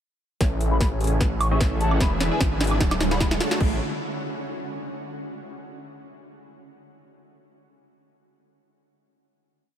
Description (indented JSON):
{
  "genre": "future bass",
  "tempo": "150 BPM",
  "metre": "4/4",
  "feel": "swing 54% on 16ths, half-time",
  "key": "A major",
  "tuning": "A4 = 440 Hz",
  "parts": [
    { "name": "shimmering ambient pad", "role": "sustained chords", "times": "1.4-3.8 s", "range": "C#3 to G#4", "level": "-35 LUFS", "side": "equal", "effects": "chorus, built-in reverb, sidechain pumping" },
    { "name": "dense compressed supersaw", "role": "riff", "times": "0.4-3.8 s", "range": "C#4 to A5", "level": "-30 LUFS", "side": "equal", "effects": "sidechain pumping, low-pass filter, dub echo" },
    { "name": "wide detuned saw bass", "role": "bass", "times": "0.4-3.8 s", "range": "D1 to A1", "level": "-24 LUFS", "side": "equal", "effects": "chorus, sidechain pumping" },
    { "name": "electronic kick drum", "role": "drums", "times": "0.4-3.7 s", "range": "none", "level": "-23 LUFS", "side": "equal", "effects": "overdrive, small room ambience" },
    { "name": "trap drum kit", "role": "drums", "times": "0.4-3.7 s", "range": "crash cymbal, hi-hat, snare drum, woodblock", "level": "-28 LUFS", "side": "equal", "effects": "overdrive, small room ambience" },
    { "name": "riser", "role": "sound effects", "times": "1.7-3.6 s", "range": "none", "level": "-34 LUFS", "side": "right 4 dB", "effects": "none" },
    { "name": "hollow wooden flute", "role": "melody", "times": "0.7-3.3 s", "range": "G#5 to C#6", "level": "-33 LUFS", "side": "left 2 dB", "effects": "sidechain pumping, dub echo" }
  ],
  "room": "light reverb, digital ambience",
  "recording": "none",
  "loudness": "-21 LUFS",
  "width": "side -10 dB against mid",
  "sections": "0.4-3.6 build; 3.6-5.2 final chord",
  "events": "build-up 0.4-3.6; drum fill 0.4-3.6; filter sweep on supersaw synth 0.4-3.6; riser 1.7-3.6",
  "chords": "0.4 Amaj7; 2.0 E7; 2.8 Dmaj7; 3.6 Amaj7"
}